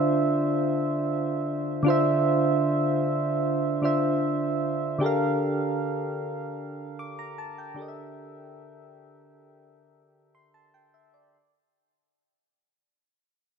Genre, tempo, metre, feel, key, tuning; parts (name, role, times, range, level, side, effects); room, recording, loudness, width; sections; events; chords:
R&B; 76 BPM; 4/4; straight; A4 = 437 Hz
soft electric-piano-like synth keys; solo; 0.0-11.5 s; D3 to D6; -24 LUFS; right 1 dB; chorus
moderate lush hall reverb, RT60 2.8 s; -23 LUFS; side -6 dB against mid
0.0-11.3 A section
fade-out 0.0-11.3
0.0 Dm9; 5.0 Gm9/D; 7.8 C13/D